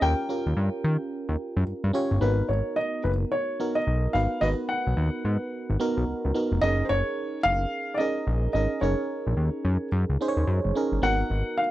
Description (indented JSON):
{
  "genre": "R&B, new jack swing",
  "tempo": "109 BPM",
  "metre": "4/4",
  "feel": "swing 62% on 16ths",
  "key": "G# dorian",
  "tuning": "A4 = 440 Hz",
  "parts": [
    { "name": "dark baby grand piano", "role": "melody", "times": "0.0-11.7 s", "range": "B4 to G5", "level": "-27 LUFS", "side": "equal", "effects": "none" },
    { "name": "FM electric piano", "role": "accompaniment", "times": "0.0-11.7 s", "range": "B3 to C#5", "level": "-29 LUFS", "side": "right 2 dB", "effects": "chorus" },
    { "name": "fat analog bass", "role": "bass", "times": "0.0-11.4 s", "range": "E#1 to D#3", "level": "-24 LUFS", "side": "equal", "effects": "none" }
  ],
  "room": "light reverb",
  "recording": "dry, close 1970s-style studio recording",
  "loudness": "-24 LUFS",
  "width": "side -15 dB against mid",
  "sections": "0.0-2.2 A section; 2.2-11.7 B section",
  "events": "none",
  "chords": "0.0 D#7; 2.2 G#m7; 6.6 F#69; 11.0 G#m7",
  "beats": "| 0.01 0.56 1.11 1.67 | 2.22 2.77 3.32 3.87 | 4.42 4.97 5.52 6.07 | 6.62 7.17 7.72 8.27 | 8.82 9.37 9.92 10.47 | 11.02 11.57"
}